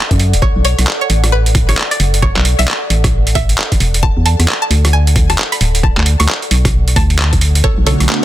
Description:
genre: UK garage, two-step garage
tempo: 133 BPM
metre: 4/4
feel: swing 62% on 16ths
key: B minor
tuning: A4 = 440 Hz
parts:
  - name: ethereal airy pad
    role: texture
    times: 0.0-8.2 s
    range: A4 to F#5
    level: -24 LUFS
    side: equal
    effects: ensemble chorus, built-in reverb, sidechain pumping
  - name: organ-like FM bass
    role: bass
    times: 0.1-8.1 s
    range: D1 to F#2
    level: -12 LUFS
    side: equal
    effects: tube saturation
  - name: boom bap sampler-style drum kit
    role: drums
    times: 0.1-8.2 s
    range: congas, handclaps, hi-hat, rim click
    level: -16 LUFS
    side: right 1 dB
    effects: overdrive
  - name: electronic kick drum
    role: drums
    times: 0.1-7.8 s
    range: none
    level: -15 LUFS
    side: equal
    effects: overdrive
  - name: string-like resonator pluck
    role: melody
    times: 0.4-8.0 s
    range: A4 to C#6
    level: -20 LUFS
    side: equal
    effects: chorus, phaser, ping-pong delay
  - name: airy breathy pad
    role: sustained chords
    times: 7.8-8.2 s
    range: A3 to F#4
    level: -18 LUFS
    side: right 3 dB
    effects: chorus, sidechain pumping
room: digital ambience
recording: dense, heavily limited modern master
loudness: -10 LUFS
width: side -14 dB against mid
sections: 0.0-7.6 A section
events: none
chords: 0.4 Bm7; 4.0 E9sus4; 5.8 D6; 7.6 Bm9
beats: | 0.42 0.87 1.32 1.77 | 2.23 2.68 3.13 3.58 | 4.03 4.48 4.93 5.38 | 5.83 6.29 6.74 7.19 | 7.64 8.09

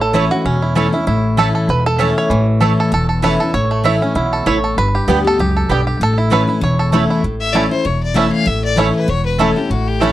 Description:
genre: bluegrass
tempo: 195 BPM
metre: 4/4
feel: swing 56% on 8ths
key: A mixolydian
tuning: A4 = 440 Hz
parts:
  - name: bluegrass banjo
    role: melody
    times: 0.0-10.1 s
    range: E3 to E5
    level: -19 LUFS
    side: right 3 dB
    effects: slapback echo
  - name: picked steel-string acoustic guitar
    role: accompaniment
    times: 0.0-10.1 s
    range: E2 to G4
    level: -17 LUFS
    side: left 2 dB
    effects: none
  - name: upright bass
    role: bass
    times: 0.0-10.1 s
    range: E1 to D2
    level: -20 LUFS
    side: equal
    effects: none
  - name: mandolin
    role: stabs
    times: 0.1-10.1 s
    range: A3 to A5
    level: -18 LUFS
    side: right 6 dB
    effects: none
  - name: clear fiddle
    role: melody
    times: 7.4-10.1 s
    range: F#4 to F5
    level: -20 LUFS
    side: left 5 dB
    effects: none
room: little or no reverb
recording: dry, close 1970s-style studio recording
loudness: -13 LUFS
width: side -14 dB against mid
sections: 0.0-7.2 A section; 7.2-10.1 B section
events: five-string banjo solo 0.0-7.2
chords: 0.0 A; 4.8 G; 6.0 A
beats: 0.14 0.45 0.76 | 1.07 1.38 1.69 2.00 | 2.31 2.61 2.92 3.23 | 3.54 3.85 4.16 4.46 | 4.77 5.08 5.39 5.70 | 6.01 6.32 6.62 6.93 | 7.24 7.55 7.86 8.16 | 8.47 8.78 9.09 9.39 | 9.70 10.01

